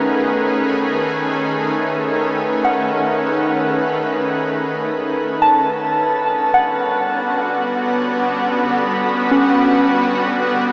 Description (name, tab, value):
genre	ambient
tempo	54 BPM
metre	4/4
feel	straight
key	B mixolydian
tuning	A4 = 438 Hz
part	shimmering ambient pad	sustained chords	0.0-10.7 s	D3 to B4	-20 LUFS	equal	chorus, built-in reverb
part	soft synth bell	arpeggios	0.0-10.7 s	C#4 to A5	-22 LUFS	equal	chorus, phaser, diffuse ambient delay
room	wet shimmer reverb, RT60 7.5 s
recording	small speaker sound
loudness	-18 LUFS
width	mono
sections	0.0-10.7 A section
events	none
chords	0.0 B13; 5.4 Gmaj7